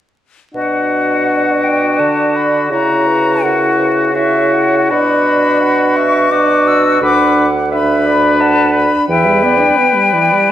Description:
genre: classical, slow romantic movement for wind quintet.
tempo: 76-89 BPM.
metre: 3/4.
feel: rubato.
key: B minor.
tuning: A4 = 443 Hz.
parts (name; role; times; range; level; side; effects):
silver concert flute; melody; 0.5-10.5 s; E5 to E6; -16 LUFS; left 5 dB; none.
warm French horn; accompaniment; 0.5-10.5 s; E3 to E4; -17 LUFS; equal; none.
mellow bassoon; bass; 0.5-9.7 s; D2 to D3; -18 LUFS; right 2 dB; none.
clear oboe; second line; 0.6-10.5 s; F#4 to B4; -16 LUFS; left 2 dB; none.
warm clarinet; accompaniment; 1.3-10.5 s; A#4 to F#5; -19 LUFS; right 5 dB; none.
room: wet scoring stage reverb, RT60 1.7 s.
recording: vinyl crackle.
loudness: -10 LUFS.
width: side -11 dB against mid.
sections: 0.5-10.5 A section.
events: none.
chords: 0.5 Bm; 2.7 F#7/C#; 4.9 Bm; 7.0 Bm/D; 9.1 Em7.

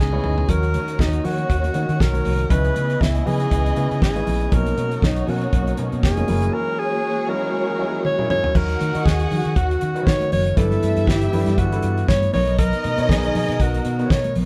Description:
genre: disco.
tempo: 119 BPM.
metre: 4/4.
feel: swing 56% on 16ths.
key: unclear.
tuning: A4 = 437 Hz.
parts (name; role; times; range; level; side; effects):
warm alto saxophone; melody; 0.0-14.4 s; D#4 to C#5; -27 LUFS; equal; none.
dark studio string section; second line; 0.0-14.3 s; A#3 to F#5; -31 LUFS; equal; none.
warm baby grand piano; accompaniment; 0.0-14.5 s; B2 to D#5; -30 LUFS; equal; none.
dark studio string section; sustained chords; 0.0-14.5 s; C#3 to A#4; -32 LUFS; equal; none.
fingered electric bass; bass; 0.0-14.5 s; E#1 to D#3; -25 LUFS; equal; none.
damped 70s drum kit; drums; 0.0-14.5 s; crash cymbal, hi-hat, kick drum, snare drum, toms; -24 LUFS; equal; none.
congas; percussion; 0.1-14.5 s; none; -32 LUFS; equal; none.
room: moderate studio reverb, RT60 0.5 s.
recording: band playing live in one room.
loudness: -20 LUFS.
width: mono.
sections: 0.5-8.6 A section; 8.6-14.5 B section.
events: drum fill 0.0-0.5, 8.0-8.6.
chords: 0.5 D#m7; 2.5 C#m7; 4.5 Bmaj9; 6.3 F#13; 8.6 D#m7; 10.6 G6; 12.3 Bmaj7.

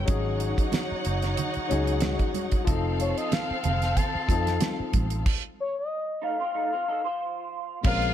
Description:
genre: lush 1970s-style soul.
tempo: 93 BPM.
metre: 4/4.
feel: swing 54% on 16ths.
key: unclear.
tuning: A4 = 440 Hz.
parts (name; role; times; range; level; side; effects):
warm studio string section; second line; 0.0-8.1 s; C4 to Gb5; -32 LUFS; right 1 dB; none.
warm grand piano; accompaniment; 0.0-8.1 s; F3 to Bb4; -31 LUFS; left 7 dB; none.
vintage muted fingered electric bass; bass; 0.0-8.1 s; F1 to F2; -28 LUFS; right 1 dB; none.
damped 70s drum kit; drums; 0.1-8.1 s; crash cymbal, hi-hat, kick drum, snare drum; -27 LUFS; right 1 dB; none.
congas; percussion; 0.1-8.0 s; none; -37 LUFS; right 7 dB; none.
expressive synth lead; melody; 3.0-8.1 s; Db5 to A5; -30 LUFS; left 3 dB; chorus.
electric guitar through a small old amp; riff; 6.2-7.8 s; A3 to C5; -33 LUFS; right 9 dB; ensemble chorus.
mellow French horn section; sustained chords; 7.8-8.1 s; Bb2 to Bb3; -38 LUFS; right 2 dB; none.
room: light reverb, small room ambience.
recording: none.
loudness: -24 LUFS.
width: side -10 dB against mid.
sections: 0.0-7.8 A section.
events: stop 5.3-7.8.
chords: 0.1 Ab7sus4; 2.7 F7.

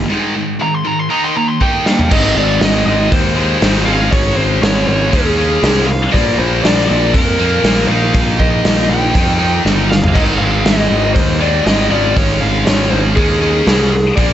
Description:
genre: hard rock.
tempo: 120 BPM.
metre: 4/4.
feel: straight.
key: unclear.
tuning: A4 = 440 Hz.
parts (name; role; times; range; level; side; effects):
high-gain distorted guitar; riff; 0.0-14.3 s; Ab2 to Eb4; -16 LUFS; right 1 dB; distortion.
fuzz picked electric bass; bass; 0.0-14.3 s; G1 to F2; -16 LUFS; equal; overdrive.
lead guitar through a small cranked amp; melody; 0.6-14.3 s; Ab4 to C6; -18 LUFS; left 1 dB; overdrive.
raw garage drum kit; drums; 1.6-14.3 s; crash cymbal, hi-hat, kick drum, snare drum, toms; -16 LUFS; equal; none.
room: light reverb, studio reverb.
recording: nothing above 8.0 kHz.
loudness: -11 LUFS.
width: side -11 dB against mid.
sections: 0.0-2.1 A section; 2.1-14.3 B section.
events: lead electric guitar solo 0.0-2.1; drum fill 1.6-2.1, 9.7-10.2.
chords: 0.1 Ab5; 1.1 Eb; 2.1 Ab; 3.9 Db5/Ab; 6.1 Bb5; 7.9 Eb/Bb; 10.2 Ab5; 11.9 Db5/Ab.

